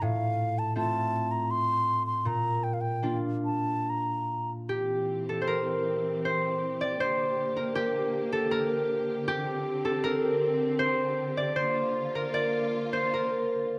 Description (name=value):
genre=celtic folk, Celtic slow air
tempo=69-82 BPM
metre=3/4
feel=rubato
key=C mixolydian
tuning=A4 = 439 Hz
part: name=bright baroque flute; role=melody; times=0.0-4.5 s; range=F5 to C6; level=-31 LUFS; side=equal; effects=none
part: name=concert harp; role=accompaniment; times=0.0-13.8 s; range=A2 to D5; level=-30 LUFS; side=equal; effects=none
part: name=dark symphonic string section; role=sustained chords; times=4.7-13.8 s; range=D3 to G4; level=-36 LUFS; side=equal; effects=none
room=light reverb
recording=close, detailed microphones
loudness=-29 LUFS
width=mono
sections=0.0-4.7 A section; 4.7-13.8 B section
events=harp solo 4.7-13.8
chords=0.0 F/A; 2.3 Bb; 4.7 C; 7.0 Gm; 11.6 Bb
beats=| 0.02 0.77 1.51 | 2.26 3.04 3.86 | 4.69 5.49 6.26 | 7.00 7.75 8.51 | 9.27 10.03 10.79 | 11.55 12.34 13.14